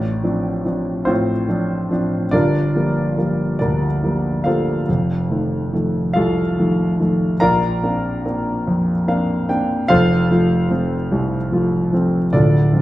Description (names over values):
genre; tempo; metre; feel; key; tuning
classical, lyrical solo piano; 48 BPM (dotted quarters); 6/8; rubato; unclear; A4 = 440 Hz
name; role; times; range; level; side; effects
dark grand piano; solo; 0.0-12.8 s; D1 to Bb5; -16 LUFS; equal; none
room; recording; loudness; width
moderate recital hall reverb, RT60 1.4 s; minimal, uncompressed stereo recording; -16 LUFS; side -16 dB against mid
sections
0.0-12.8 A section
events
grand piano fill 8.7-9.9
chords
0.0 Dm7/A; 2.3 Gm7; 4.9 F7; 7.4 Bbadd9; 9.9 F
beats
1.06 | 2.33 3.60 | 4.88 6.16 | 7.42 8.67 | 9.89 11.11 | 12.33